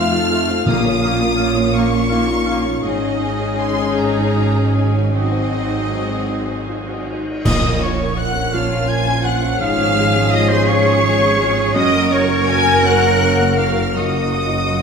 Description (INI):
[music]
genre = cinematic, emotional film score for orchestra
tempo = 51-56 BPM (dotted quarters)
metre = 6/8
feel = rubato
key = Bb minor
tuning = A4 = 440 Hz
[part]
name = warm symphonic violin section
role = melody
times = 0.0-14.8 s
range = Eb5 to Ab6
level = -24 LUFS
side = left 1 dB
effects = none
[part]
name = mellow flute section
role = second line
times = 0.0-14.8 s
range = C5 to C6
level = -25 LUFS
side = left 4 dB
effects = none
[part]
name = rich symphonic violin section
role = second line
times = 0.0-14.8 s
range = Bb3 to Ab5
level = -25 LUFS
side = left 3 dB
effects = none
[part]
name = warm clarinet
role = second line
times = 0.0-7.1 s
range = A3 to Db4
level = -28 LUFS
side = left 2 dB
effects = none
[part]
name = warm oboe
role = second line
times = 0.0-14.8 s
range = C5 to Ab5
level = -26 LUFS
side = right 2 dB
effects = none
[part]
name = dark baby grand piano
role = accompaniment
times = 0.0-14.8 s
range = F2 to F5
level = -24 LUFS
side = right 1 dB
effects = none
[part]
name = warm symphonic viola section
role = accompaniment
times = 0.0-14.8 s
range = Gb3 to Bb4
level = -26 LUFS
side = right 4 dB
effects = none
[part]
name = dark French horn section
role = sustained chords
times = 0.0-14.8 s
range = F3 to F4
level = -23 LUFS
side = left 5 dB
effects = none
[part]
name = clear symphonic cello section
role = bass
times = 0.0-14.8 s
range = F2 to Bb4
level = -22 LUFS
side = right 2 dB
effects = none
[part]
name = rich symphonic double bass section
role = bass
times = 0.0-14.8 s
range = F1 to Bb1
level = -22 LUFS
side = right 3 dB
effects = none
[part]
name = timpani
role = percussion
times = 0.7-1.7, 7.4-8.5 s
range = Bb2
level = -24 LUFS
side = right 2 dB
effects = none
[part]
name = cymbal swell, clash cymbals and concert bass drum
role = percussion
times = 2.8-8.9 s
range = none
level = -26 LUFS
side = equal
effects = none
[sound]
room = wet scoring stage reverb, RT60 1.5 s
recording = none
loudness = -14 LUFS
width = side -6 dB against mid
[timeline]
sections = 0.0-7.5 A section; 7.5-14.8 B section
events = band accent 7.5-8.2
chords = 0.0 F; 0.7 Bbm; 2.8 Dbsus2/Ab; 5.1 Ab7; 7.5 Bbm; 9.6 Db/Ab; 11.8 Gb; 14.0 Ebmadd9/Gb